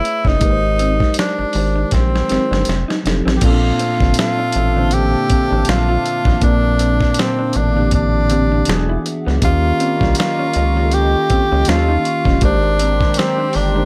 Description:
R&B, neo-soul; 80 BPM; 4/4; swing 56% on 16ths; Bb major; A4 = 441 Hz
warm tenor saxophone; melody; 0.0-13.9 s; C4 to G4; -21 LUFS; equal; slapback echo
electric guitar through a small old amp; second line; 0.0-13.9 s; Bb3 to F4; -28 LUFS; equal; subtle chorus
mellow tine electric piano; accompaniment; 0.0-13.9 s; Bb2 to C#5; -23 LUFS; equal
dusty soul sampler-style drum kit; drums; 0.1-13.7 s; crash cymbal, hi-hat, kick drum, snare drum; -21 LUFS; equal
rubbery square bass; bass; 0.3-13.9 s; E1 to Eb2; -20 LUFS; equal
hollow soft pad; sustained chords; 5.0-13.9 s; Bb3 to D6; -32 LUFS; equal
mellow horn section; stabs; 3.4-13.9 s; D3 to Bb4; -32 LUFS; equal
little or no reverb; -16 LUFS; mono
0.0-3.4 A section; 3.4-13.9 B section
drum fill 1.9-3.4
0.4 Abmaj9; 2.7 F13; 3.4 Bbmaj7; 8.7 E9; 9.4 Eb9; 12.4 Abmaj9

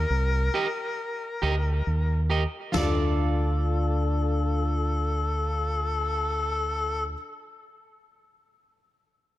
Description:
dub reggae; 68 BPM; 4/4; straight; D phrygian; A4 = 440 Hz
breathy tenor saxophone; second line; 0.0-7.0 s; A4 to Bb4; -30 LUFS; left 3 dB; dub echo
deep dub fingered electric bass; bass; 0.0-7.1 s; C2 to Eb2; -26 LUFS; equal
electric guitar at the edge of break-up; accompaniment; 0.5-7.2 s; F4 to Eb5; -32 LUFS; right 4 dB; spring reverb, dub echo
dark upright piano; stabs; 2.7-7.1 s; D4 to D5; -32 LUFS; left 4 dB; dub echo
vintage drum kit; drums; 2.7-3.0 s; china cymbal, snare drum, toms; -31 LUFS; equal
light reverb, small room ambience; -24 LUFS; side -15 dB against mid
0.0-2.7 A section; 2.7-6.3 B section
break 0.0-2.7
0.0 Eb; 2.7 Dm

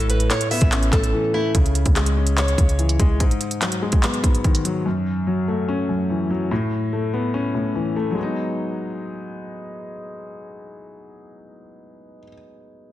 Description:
hip hop, trap; 145 BPM; 4/4; half-time; G# phrygian; A4 = 440 Hz
nylon-string guitar; melody; 0.0-1.5 s; E4 to E5; -24 LUFS; right 1 dB; low-pass filter, ping-pong delay
dark concert grand piano; accompaniment; 0.0-12.9 s; F#2 to C#5; -23 LUFS; left 2 dB; low-pass filter
clean 808-style bass; bass; 0.0-3.2 s; A1 to C#2; -20 LUFS; equal
trap drum kit; drums; 0.0-4.7 s; handclaps, hi-hat, kick drum; -20 LUFS; equal
light reverb, studio reverb; dense, heavily limited modern master; -18 LUFS; side -14 dB against mid
0.0-1.5 A section; 1.5-8.2 B section; 8.2-11.5 C section
drums muted 1.1-1.5
0.0 Aadd9; 1.5 C#m; 3.2 G#m7; 4.9 F#m7; 6.5 Aadd9; 8.2 G#m7

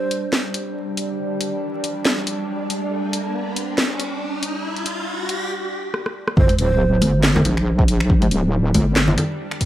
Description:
deep dubstep; 139 BPM; 4/4; swing 56% on 16ths, half-time; G minor; A4 = 440 Hz
breathy long shakuhachi; melody; 0.0-0.3, 6.4-7.2 s; C5; -27 LUFS; right 4 dB; dub echo
bowed-like drone; sustained chords; 0.0-9.7 s; G3 to D4; -28 LUFS; right 1 dB; built-in reverb
riser and sub drop; sound effects; 1.2-8.1 s; -28 LUFS; equal
garage drum kit; drums; 0.1-9.7 s; finger snaps, handclaps, hi-hat, rim click, snare drum; -22 LUFS; equal; small room ambience
wobble bass; bass; 6.4-9.2 s; D1 to Bb1; -18 LUFS; equal; chorus
electronic kick drum; drums; 6.4-9.7 s; -17 LUFS; equal; overdrive, small room ambience
congas; percussion; 6.5-9.3 s; -22 LUFS; left 1 dB
light reverb; vinyl crackle; -18 LUFS; side -13 dB against mid
0.0-6.4 A section; 6.4-9.7 B section
build-up 0.0-6.4; filter sweep on synth drone 0.0-6.4; riser 1.2-5.5; drum fill 5.9-6.4; drop 6.4-9.7; impact 6.4-8.1
0.0 G5; 6.4 Gm

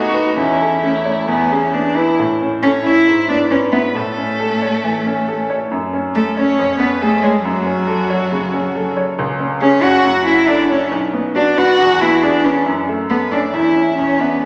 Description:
quick classical-period movement for piano trio; 137 BPM; 4/4; straight; A major; A4 = 440 Hz
rich violin; melody; 0.0-14.4 s; E4 to F#5; -26 LUFS; equal
warm cello; second line; 0.0-14.5 s; F#3 to F#4; -18 LUFS; equal
bright baby grand piano; accompaniment; 0.0-14.5 s; B1 to C#5; -21 LUFS; equal
wet scoring stage reverb, RT60 1.8 s; -16 LUFS; mono
0.0-2.2 A section; 2.2-14.5 B section
0.4 A/E; 1.3 E; 2.2 A; 3.1 E/G#; 4.0 A; 5.7 F#m; 6.6 C#/E#; 7.4 F#m; 9.2 C#5; 10.0 F#m; 10.9 B5; 11.8 E; 12.7 F#m; 13.5 C#m/E; 14.0 E5

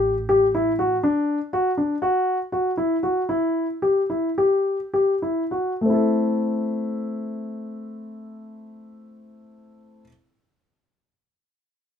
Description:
contemporary instrumental, chamber music in an uneven meter; 197-242 BPM (eighths); 9/8; straight; A dorian; A4 = 440 Hz
warm concert grand piano; arpeggios; 0.0-10.1 s; A3 to A4; -21 LUFS; left 1 dB
upright bass; bass; 0.0-1.0 s; A1; -32 LUFS; right 2 dB
wet small room reverb, RT60 0.5 s; minimal, uncompressed stereo recording; -20 LUFS; side -8 dB against mid
0.0-5.8 A section; 5.8-8.6 B section
slowing down 1.5-5.8
0.0 A5; 1.0 D; 3.3 Em; 5.8 Am

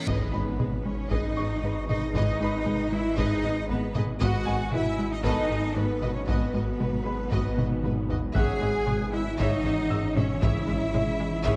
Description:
cinematic, hybrid orchestral and electronic film score; 116 BPM; 4/4; straight; G# phrygian; A4 = 439 Hz
rich studio violin section; second line; 0.0-11.6 s; B4 to G#5; -40 LUFS; equal
deep dark ambient pad; sustained chords; 0.0-11.6 s; E3 to C#5; -40 LUFS; equal
mellow French horn section; sustained chords; 0.0-11.6 s; B3 to G#4; -37 LUFS; equal
rich studio cello section; bass; 0.0-11.6 s; B3 to G#4; -35 LUFS; equal
reverse cymbal and impact; sound effects; 0.0-2.1 s; -41 LUFS; equal
clear grand piano; texture; 0.0-11.6 s; A4 to F#6; -42 LUFS; equal; digital delay
warm symphonic violin section; melody; 0.1-11.6 s; B4 to E5; -40 LUFS; equal
rich symphonic viola section; accompaniment; 0.1-11.6 s; F#4 to C#5; -41 LUFS; equal
harp-like synth pluck; arpeggios; 0.1-11.6 s; C#3 to B4; -40 LUFS; equal
plucky analog bass; riff; 0.1-11.6 s; G#2 to G#3; -35 LUFS; equal
warm symphonic double bass section; bass; 0.1-11.5 s; G#1; -35 LUFS; equal
detuned saw bass; bass; 0.1-11.6 s; G#1; -37 LUFS; equal; chorus
taiko ensemble; drums; 0.1-11.6 s; -34 LUFS; equal
moderate scoring stage reverb, RT60 2.0 s; dark, warm production; -27 LUFS; mono
0.1-11.6 A section
impact 0.1-2.1; drum fill 7.6-8.4
0.1 G#m; 4.2 B/G#; 8.4 C#m/G#

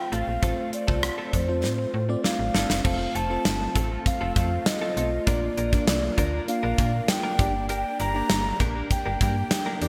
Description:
1980s-style pop; 99 BPM; 4/4; straight; A4 = 439 Hz
breathy alto ocarina; melody; 0.0-9.8 s; C5 to Bb5; -32 LUFS; equal
FM electric piano; accompaniment; 0.0-9.9 s; A3 to D5; -35 LUFS; equal; chorus
string machine, violas; sustained chords; 0.0-9.9 s; A3 to G4; -38 LUFS; equal; ensemble chorus
direct-recorded clean electric guitar; riff; 0.1-9.9 s; A3 to Bb4; -37 LUFS; equal; subtle chorus
slap-like FM bass; bass; 0.1-9.9 s; F1 to Bb2; -31 LUFS; equal
gated 80s drum kit; drums; 0.1-9.9 s; crash cymbal, hi-hat, kick drum, rim click, snare drum; -28 LUFS; equal; gated reverb
moderate lush hall reverb, RT60 1.9 s, small room ambience; bright 1980s-style digital production; -25 LUFS; mono
0.0-2.8 A section; 2.8-9.9 B section
drum fill 1.6-2.8
0.0 F/A; 2.8 F; 5.3 Bb; 7.4 Gm

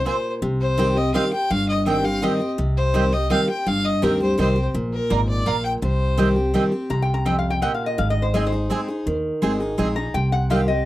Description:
bluegrass; 167 BPM; 3/4; straight; C minor; A4 = 440 Hz
clear fiddle; melody; 0.0-6.5 s; Bb4 to G5; -25 LUFS; left 2 dB
picked steel-string acoustic guitar; accompaniment; 0.0-10.9 s; F2 to Ab4; -22 LUFS; equal
upright bass; bass; 0.0-10.9 s; G1 to Eb2; -24 LUFS; equal
mandolin; stabs; 0.1-10.6 s; Bb3 to Bb5; -26 LUFS; right 7 dB
lap resonator guitar; second line; 6.9-10.9 s; C5 to Bb5; -25 LUFS; left 2 dB
little or no reverb; dry, close 1970s-style studio recording; -19 LUFS; side -15 dB against mid
0.0-6.9 A section; 6.9-10.9 B section
resonator guitar played with a steel bar solo 6.9-10.9
0.4 Cm; 4.7 Bb; 5.8 Cm; 8.0 Ab; 10.1 Cm

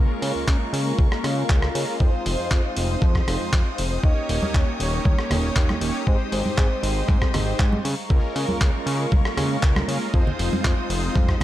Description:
nu-disco, nu disco; 118 BPM; 4/4; straight; A4 = 440 Hz
mellow synth brass; accompaniment; 0.0-11.4 s; Ab3 to Db5; -28 LUFS; equal; chorus, phaser, cassette tape, tape echo
warm chamber string section; sustained chords; 0.0-11.4 s; Ab3 to Eb6; -33 LUFS; left 2 dB; sidechain pumping
fat analog bass; bass; 0.0-11.4 s; Eb1 to Db3; -26 LUFS; equal
dusty soul sampler-style drum kit; drums; 0.2-11.4 s; handclaps, hi-hat, rim click; -29 LUFS; equal
electronic kick drum; drums; 0.5-11.4 s; -19 LUFS; equal
soft octave-layered synth lead; melody; 4.0-7.8 s; C5 to Eb5; -32 LUFS; equal; chorus, tape echo
congas; percussion; 4.4-11.4 s; -29 LUFS; right 2 dB
digital ambience; -19 LUFS; side -14 dB against mid
0.0-11.4 A section
0.0 Db6; 2.0 Fm7; 4.0 Eb7; 6.1 Abmaj7; 7.8 Db6; 10.1 Fm7

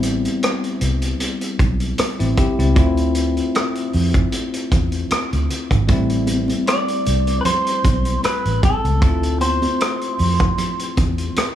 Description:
lush 1970s-style soul; 77 BPM; 4/4; swing 54% on 16ths; A minor; A4 = 440 Hz
bell-like tine electric piano; accompaniment; 0.0-11.6 s; E3 to G4; -23 LUFS; left 3 dB; medium stereo tremolo
vintage muted fingered electric bass; bass; 0.0-11.4 s; G#1 to F2; -20 LUFS; right 1 dB
vintage drum kit; drums; 0.0-11.6 s; hi-hat, kick drum, rim click; -21 LUFS; right 1 dB
congas; percussion; 5.9-11.6 s; -27 LUFS; right 4 dB
electric guitar through a small old amp; melody; 6.7-11.6 s; A4 to D5; -22 LUFS; equal
studio reverb; studio ambience; -16 LUFS; side -11 dB against mid
0.0-11.6 A section
0.0 Am9; 2.8 Dm7; 5.9 Am7; 9.0 Dm7

